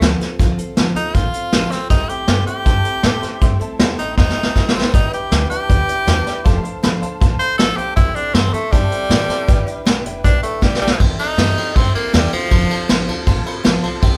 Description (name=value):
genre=rockabilly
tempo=158 BPM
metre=4/4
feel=straight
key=C major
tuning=A4 = 439 Hz
part: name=edgy tenor saxophone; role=melody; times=0.0-13.1 s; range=F3 to C5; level=-23 LUFS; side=equal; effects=none
part: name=picked steel-string acoustic guitar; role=accompaniment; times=0.0-14.2 s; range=C3 to C5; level=-28 LUFS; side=equal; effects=none
part: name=upright bass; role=bass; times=0.0-14.2 s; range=F1 to A2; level=-24 LUFS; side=equal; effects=none
part: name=vintage brush drum kit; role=drums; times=0.0-14.1 s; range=hi-hat, kick drum, ride cymbal, snare drum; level=-18 LUFS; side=equal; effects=none
part: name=honky-tonk upright piano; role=accompaniment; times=1.9-14.1 s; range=B4 to C6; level=-33 LUFS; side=equal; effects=none
room=light reverb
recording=band playing live in one room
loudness=-17 LUFS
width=mono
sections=0.0-11.0 A section; 11.0-14.2 B section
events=drum fill 4.2-4.9, 10.6-11.0; tenor saxophone solo 11.0-14.2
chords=0.0 F6; 1.9 C6; 4.9 G6; 6.5 F6; 8.0 C6; 9.5 G6; 11.0 C6; 12.5 F6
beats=0.02 | 0.39 0.77 1.15 1.53 | 1.91 2.29 2.67 3.04 | 3.42 3.80 4.18 4.56 | 4.94 5.32 5.70 6.08 | 6.46 6.83 7.21 7.59 | 7.97 8.35 8.73 9.11 | 9.49 9.87 10.24 10.62 | 11.00 11.38 11.76 12.14 | 12.52 12.89 13.27 13.65 | 14.03